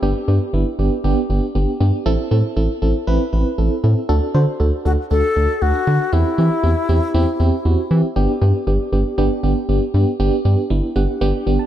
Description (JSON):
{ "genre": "pop", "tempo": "118 BPM", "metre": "4/4", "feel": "straight", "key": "unclear", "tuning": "A4 = 440 Hz", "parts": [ { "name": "FM electric piano with tremolo", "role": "accompaniment", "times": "0.0-11.7 s", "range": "B3 to A5", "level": "-20 LUFS", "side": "right 2 dB", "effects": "phaser" }, { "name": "rubbery square bass", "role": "bass", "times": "0.0-11.6 s", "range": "G1 to E3", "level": "-17 LUFS", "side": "equal", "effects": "none" }, { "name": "bright reedy wooden-headed alto flute", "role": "melody", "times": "4.9-7.9 s", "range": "E4 to A4", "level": "-21 LUFS", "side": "left 4 dB", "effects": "digital delay" } ], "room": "light reverb, small room ambience", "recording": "dark, warm production", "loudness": "-15 LUFS", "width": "side -11 dB against mid", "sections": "0.0-11.7 A section", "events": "FM electric piano fill 10.7-11.7", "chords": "0.0 G; 2.1 Am; 4.1 D; 6.1 C/E; 8.2 G" }